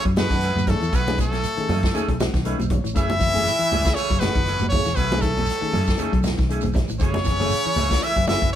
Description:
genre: afrobeat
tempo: 118 BPM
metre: 4/4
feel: swing 56% on 16ths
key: F# dorian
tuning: A4 = 444 Hz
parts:
  - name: brilliant trumpet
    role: melody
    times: 0.0-8.6 s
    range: A4 to E5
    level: -24 LUFS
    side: equal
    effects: none
  - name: breathy tenor saxophone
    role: second line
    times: 0.0-8.5 s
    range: A3 to E4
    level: -33 LUFS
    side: right 5 dB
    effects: none
  - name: clear trombone section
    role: second line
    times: 0.0-8.5 s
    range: A2 to E3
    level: -34 LUFS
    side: left 2 dB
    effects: none
  - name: semi-hollow electric guitar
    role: stabs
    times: 0.0-8.6 s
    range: D#3 to G#4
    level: -34 LUFS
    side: right 6 dB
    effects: none
  - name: vintage drum kit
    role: drums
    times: 0.0-8.5 s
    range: hi-hat, kick drum, snare drum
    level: -25 LUFS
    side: equal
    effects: none
  - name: semi-hollow electric guitar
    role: arpeggios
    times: 0.1-8.6 s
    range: B2 to F#3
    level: -30 LUFS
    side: left 4 dB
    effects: none
  - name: fingered electric bass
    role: bass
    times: 0.1-8.6 s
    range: E1 to F#2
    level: -25 LUFS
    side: equal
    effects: none
  - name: bright reed electric piano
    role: accompaniment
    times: 0.2-8.4 s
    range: A3 to F#5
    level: -31 LUFS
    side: left 4 dB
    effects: fast tremolo
  - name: congas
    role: percussion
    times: 0.2-8.4 s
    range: none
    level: -28 LUFS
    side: right 1 dB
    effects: none
  - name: shekere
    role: percussion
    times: 0.2-8.5 s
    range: none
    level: -36 LUFS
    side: right 3 dB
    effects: none
room: light reverb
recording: band playing live in one room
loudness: -19 LUFS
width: side -10 dB against mid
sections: 0.0-8.6 A section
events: reed electric piano fill 1.9-3.0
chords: 0.0 F#m9; 0.9 B13; 3.0 F#m9; 5.0 B13; 7.0 F#m9

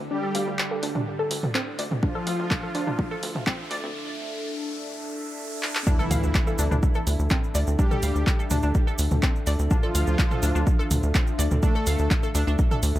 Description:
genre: melodic techno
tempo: 125 BPM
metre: 4/4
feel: straight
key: D minor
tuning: A4 = 440 Hz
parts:
  - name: dark analog pad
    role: sustained chords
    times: 1.4-13.0 s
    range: D4 to E5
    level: -34 LUFS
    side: left 2 dB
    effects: chorus, phaser, sidechain pumping
  - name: tight sequencer bass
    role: bass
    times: 0.0-13.0 s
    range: D2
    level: -24 LUFS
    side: equal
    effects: sidechain pumping, high-pass filter
  - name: bowed-like drone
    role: drone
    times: 0.0-13.0 s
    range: D3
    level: -40 LUFS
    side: right 4 dB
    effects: none
  - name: riser and impact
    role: sound effects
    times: 1.1-7.8 s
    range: none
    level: -37 LUFS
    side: equal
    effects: none
  - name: soft supersaw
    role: melody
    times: 0.1-12.3 s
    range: E3 to A4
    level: -32 LUFS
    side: equal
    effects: sidechain pumping, analog delay
  - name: analog pluck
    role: arpeggios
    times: 0.1-12.7 s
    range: C4 to F5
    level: -32 LUFS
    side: left 1 dB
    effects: chorus, sidechain pumping, tape echo
  - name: punchy analog drum machine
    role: drums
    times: 0.3-12.9 s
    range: handclaps, hi-hat, toms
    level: -30 LUFS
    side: equal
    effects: sidechain pumping on hats, sidechain pumping on toms, tape echo
  - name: electronic kick drum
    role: drums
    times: 2.0-12.7 s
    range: none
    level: -23 LUFS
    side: equal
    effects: none
  - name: cabasa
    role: percussion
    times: 5.9-13.0 s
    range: none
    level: -36 LUFS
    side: right 5 dB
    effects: none
room: light reverb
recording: echo-heavy mix, high-pass filter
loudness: -22 LUFS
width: side -14 dB against mid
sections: 0.0-5.9 A section; 5.9-13.0 B section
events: build-up 0.0-5.9; filter sweep on synth arpeggio sound 0.0-5.9; filter sweep on analog synth pad 0.0-5.9; filter sweep 0.0-5.9; riser 1.1-5.9; break 3.9-5.9; drum fill 5.6; drop 5.9-13.0; impact 5.9-7.8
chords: 0.0 Dmadd9

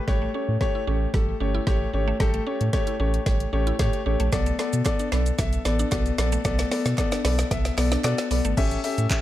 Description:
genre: dance-pop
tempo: 113 BPM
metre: 4/4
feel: straight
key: unclear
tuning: A4 = 441 Hz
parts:
  - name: warm grand piano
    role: accompaniment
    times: 0.0-9.2 s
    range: A3 to E5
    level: -27 LUFS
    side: left 4 dB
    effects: sidechain pumping
  - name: mallet-like synth pluck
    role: arpeggios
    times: 0.1-8.6 s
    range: F#3 to G4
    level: -34 LUFS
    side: right 4 dB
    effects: chorus, sidechain pumping, ping-pong delay
  - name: warm sub bass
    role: bass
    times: 0.1-9.1 s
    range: G1 to B2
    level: -25 LUFS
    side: right 1 dB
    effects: sidechain pumping
  - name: deep house drum kit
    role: drums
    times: 0.1-9.2 s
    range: crash cymbal, handclaps, hi-hat, kick drum, shaker, snare drum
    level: -26 LUFS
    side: equal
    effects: none
  - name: group handclap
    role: percussion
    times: 4.9-9.2 s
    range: none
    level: -40 LUFS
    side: right 6 dB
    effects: none
room: digital ambience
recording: none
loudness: -21 LUFS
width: side -14 dB against mid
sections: 0.1-8.6 A section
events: build-up 0.1-8.6; drum fill 0.1-8.6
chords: 0.1 A7; 4.3 Bm7; 8.6 A7

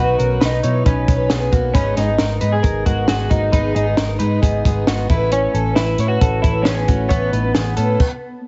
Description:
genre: jangly indie pop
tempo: 134 BPM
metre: 4/4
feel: straight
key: unclear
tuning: A4 = 440 Hz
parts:
  - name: electric guitar through a small old amp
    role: melody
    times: 0.0-8.4 s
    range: B3 to G#4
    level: -25 LUFS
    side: equal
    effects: analog chorus, slapback echo
  - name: fingerpicked twelve-string acoustic guitar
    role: accompaniment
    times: 0.0-8.0 s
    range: G#2 to B4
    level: -26 LUFS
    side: equal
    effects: none
  - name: direct-recorded clean electric guitar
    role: arpeggios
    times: 0.0-8.0 s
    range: A3 to C#5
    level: -27 LUFS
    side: equal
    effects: slapback echo
  - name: vintage muted picked electric bass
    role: bass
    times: 0.0-8.0 s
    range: G#1 to B2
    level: -22 LUFS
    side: equal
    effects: none
  - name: compact cocktail drum kit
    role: drums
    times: 0.2-8.1 s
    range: crash cymbal, hi-hat, kick drum, snare drum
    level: -20 LUFS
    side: equal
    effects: none
room: little or no reverb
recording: heavily compressed radio sound, nothing above 7.8 kHz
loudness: -17 LUFS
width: mono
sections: 0.0-8.5 A section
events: stop 8.0-8.5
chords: 0.0 B; 1.7 G#m; 5.1 Aadd9

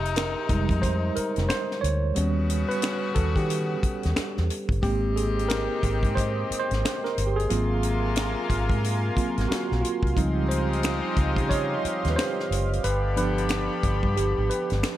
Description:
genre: R&B, neo-soul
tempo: 90 BPM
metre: 4/4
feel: swing 63% on 16ths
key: unclear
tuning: A4 = 444 Hz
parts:
  - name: tine electric piano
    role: accompaniment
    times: 0.0-15.0 s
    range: F3 to Db5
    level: -28 LUFS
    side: right 2 dB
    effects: medium stereo tremolo
  - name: bright saxophone section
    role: stabs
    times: 0.0-15.0 s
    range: C3 to G4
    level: -32 LUFS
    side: left 6 dB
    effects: none
  - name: vintage muted fingered electric bass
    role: bass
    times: 0.0-14.8 s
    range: F1 to Eb3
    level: -26 LUFS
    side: equal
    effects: none
  - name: tight funk drum kit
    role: drums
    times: 0.1-15.0 s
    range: finger snaps, hi-hat, kick drum, snare drum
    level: -29 LUFS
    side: equal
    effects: none
  - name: warm analog pad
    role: sustained chords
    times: 4.8-15.0 s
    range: Ab3 to C6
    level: -33 LUFS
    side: right 2 dB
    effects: chorus
room: small room reverb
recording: none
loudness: -23 LUFS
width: side -13 dB against mid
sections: 0.0-15.0 A section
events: tine electric piano solo 0.0-15.0; kick muted 14.2-15.0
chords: 0.0 Fm7; 2.2 Eb7alt; 4.8 Abmaj7; 7.5 Ab13; 10.2 Dbmaj9#11; 12.8 G7

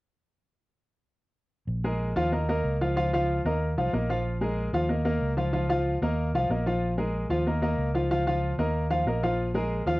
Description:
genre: latin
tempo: 187 BPM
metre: 4/4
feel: straight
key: unclear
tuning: A4 = 440 Hz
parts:
  - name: fingered electric bass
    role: bass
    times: 1.7-10.0 s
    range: Bb1 to Eb2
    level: -28 LUFS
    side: equal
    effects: none
  - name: clear grand piano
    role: accompaniment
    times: 1.8-10.0 s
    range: F3 to F5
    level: -26 LUFS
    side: equal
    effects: cassette tape
room: light reverb, small room ambience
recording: home recording on cassette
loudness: -24 LUFS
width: side -20 dB against mid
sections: 1.7-10.0 A section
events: none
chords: 1.7 Bb5; 2.3 Ebsus2; 4.3 Bb5; 4.9 Ebsus2; 6.8 Bb5; 7.5 Ebsus2; 9.4 Bb5

